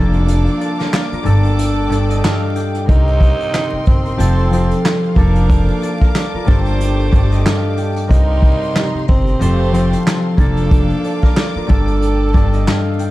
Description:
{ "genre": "hip hop, boom-bap hip-hop", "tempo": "92 BPM", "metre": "4/4", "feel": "swing 58% on 16ths", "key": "unclear", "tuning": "A4 = 440 Hz", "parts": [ { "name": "concert harp", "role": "accompaniment", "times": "0.0-13.1 s", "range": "G2 to A5", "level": "-18 LUFS", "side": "left 1 dB", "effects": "none" }, { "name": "dark studio string section", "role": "sustained chords", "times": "0.0-13.1 s", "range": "Bb3 to D6", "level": "-28 LUFS", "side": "right 1 dB", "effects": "none" }, { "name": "clear saxophone section", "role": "stabs", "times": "0.0-13.0 s", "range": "Eb3 to C5", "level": "-26 LUFS", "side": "right 4 dB", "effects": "ping-pong delay" }, { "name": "upright bass", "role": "bass", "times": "0.0-12.6 s", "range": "F1 to C2", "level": "-16 LUFS", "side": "equal", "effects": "none" }, { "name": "vintage brush drum kit", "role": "drums", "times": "0.1-13.1 s", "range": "handclaps, hi-hat, kick drum, snare drum", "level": "-16 LUFS", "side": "equal", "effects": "none" }, { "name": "growling tenor saxophone", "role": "melody", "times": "2.9-10.0 s", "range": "C4 to Eb4", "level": "-23 LUFS", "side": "right 2 dB", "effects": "ping-pong delay" } ], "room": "studio ambience", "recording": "dark, warm production, vinyl crackle", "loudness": "-12 LUFS", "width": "side -17 dB against mid", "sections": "0.0-13.1 A section", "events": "break 0.3-2.9", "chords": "0.0 Bbmaj7/F; 1.3 Gsus2; 2.9 Cm7; 4.2 Fadd9; 5.2 Bbmaj7/F; 6.5 Gsus2; 8.1 Cm7; 9.4 Fadd9; 10.4 Bbmaj7/F; 11.7 Gsus2", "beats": "| 0.28 0.93 1.58 2.23 | 2.89 3.54 4.19 4.84 | 5.50 6.15 6.80 7.45 | 8.11 8.76 9.41 10.06 | 10.71 11.37 12.02 12.67" }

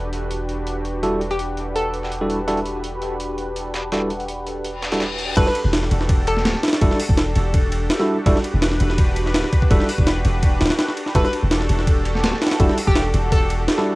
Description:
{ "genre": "drum and bass, jungle", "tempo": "166 BPM", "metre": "4/4", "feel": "straight", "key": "E minor", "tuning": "A4 = 440 Hz", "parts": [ { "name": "lush unison pad", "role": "sustained chords", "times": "0.0-14.0 s", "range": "D4 to B4", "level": "-26 LUFS", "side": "equal", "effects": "chorus, phaser, vintage 12-bit sampler grit, cassette tape" }, { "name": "long sustained 808-style bass", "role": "bass", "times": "0.0-13.7 s", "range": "D1 to E1", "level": "-23 LUFS", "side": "equal", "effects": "none" }, { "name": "breakbeat sampler-style drum kit", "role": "drums", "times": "0.1-5.3 s", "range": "hi-hat, snare drum", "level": "-32 LUFS", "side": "equal", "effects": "high-pass filter on hats, cassette tape, high-pass filter on snare" }, { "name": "tine electric piano", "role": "stabs", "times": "1.0-13.9 s", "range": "G3 to A4", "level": "-24 LUFS", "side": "right 1 dB", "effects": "cassette tape, dub echo" }, { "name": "hollow square pluck", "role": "melody", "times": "1.3-2.1, 5.4-6.6, 11.2-13.7 s", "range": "G4 to B4", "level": "-26 LUFS", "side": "left 1 dB", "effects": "chorus, cassette tape, dub echo" }, { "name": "reverse cymbal", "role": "sound effects", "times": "4.8-5.4 s", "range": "none", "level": "-27 LUFS", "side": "left 4 dB", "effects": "none" }, { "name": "breakbeat sampler-style drum kit", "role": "drums", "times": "5.4-13.9 s", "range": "crash cymbal, hi-hat, kick drum, ride cymbal, snare drum", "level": "-19 LUFS", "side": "equal", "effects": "cassette tape" } ], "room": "light reverb", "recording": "home recording on cassette", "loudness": "-17 LUFS", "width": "side -21 dB against mid", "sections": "0.0-5.4 A section; 5.4-14.0 B section", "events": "reverse cymbal 4.8-5.4; drop 5.4-14.0", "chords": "0.0 Em11", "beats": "0.31 0.67 | 1.03 1.39 1.75 2.12 | 2.48 2.84 3.20 3.56 | 3.92 4.29 4.65 5.01 | 5.37 5.73 6.09 6.45 | 6.82 7.18 7.54 7.90 | 8.26 8.62 8.98 9.35 | 9.71 10.07 10.43 10.79 | 11.15 11.51 11.88 12.24 | 12.60 12.96 13.32 13.68" }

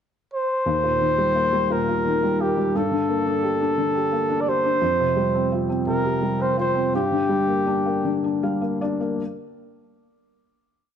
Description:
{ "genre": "six-eight pop ballad", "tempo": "57 BPM (dotted quarters)", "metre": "6/8", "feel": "uneven beats", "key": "G minor", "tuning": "A4 = 440 Hz", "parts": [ { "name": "warm flugelhorn", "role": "melody", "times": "0.3-8.4 s", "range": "G4 to D5", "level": "-22 LUFS", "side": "right 1 dB", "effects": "slapback echo" }, { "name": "felt-muted upright piano", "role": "accompaniment", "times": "0.7-9.2 s", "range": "Eb2 to F5", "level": "-23 LUFS", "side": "left 2 dB", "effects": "none" } ], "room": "moderate echo chamber reverb, RT60 1.9 s", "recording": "dark, warm production", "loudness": "-20 LUFS", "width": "side -8 dB against mid", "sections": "0.0-0.7 pickup bar; 0.7-9.2 verse", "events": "slowing down 4.8-9.2; felt piano fill 8.0-9.2", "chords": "0.0 N.C.; 0.7 Ebadd9; 2.7 Gmadd9; 4.8 Fsus2; 6.9 Gm", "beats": "| 0.66 1.70 | 2.74 3.78 | 4.82 5.86 | 6.93 8.04" }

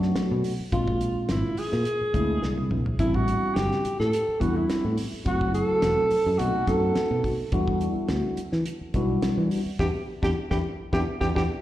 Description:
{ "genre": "electric jazz fusion", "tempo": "106 BPM", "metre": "4/4", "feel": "swing 53% on 16ths", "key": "E minor", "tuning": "A4 = 442 Hz", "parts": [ { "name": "bright tine electric piano", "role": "accompaniment", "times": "0.0-11.4 s", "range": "F#3 to F#4", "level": "-28 LUFS", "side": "left 1 dB", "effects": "lush chorus, plate reverb" }, { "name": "fretless electric bass", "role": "bass", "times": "0.0-11.5 s", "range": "E1 to E3", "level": "-27 LUFS", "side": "equal", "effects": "none" }, { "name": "damped 70s drum kit", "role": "drums", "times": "0.0-11.5 s", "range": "hi-hat, kick drum, snare drum, toms", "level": "-31 LUFS", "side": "equal", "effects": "none" }, { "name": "mellow alto saxophone", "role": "melody", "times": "0.7-11.4 s", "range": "E4 to A4", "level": "-27 LUFS", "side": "right 1 dB", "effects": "plate reverb, slapback echo, tape echo" } ], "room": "moderate club reverb, RT60 0.6 s", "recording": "live gig heard through the venue's PA, recital hall reverb", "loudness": "-23 LUFS", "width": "side -14 dB against mid", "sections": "0.0-11.6 A section", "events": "drum fill 2.4-3.0, 10.9-11.6; band accent 9.8-11.6", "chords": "0.0 Bm7; 0.7 A#9; 3.0 Am11; 5.3 F#m7b5; 6.4 B7b9; 7.5 Em7", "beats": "0.16 | 0.73 1.30 1.86 2.43 | 3.00 3.56 4.13 4.70 | 5.27 5.83 6.40 6.97 | 7.53 8.10 8.66 9.23 | 9.80 10.36 10.93" }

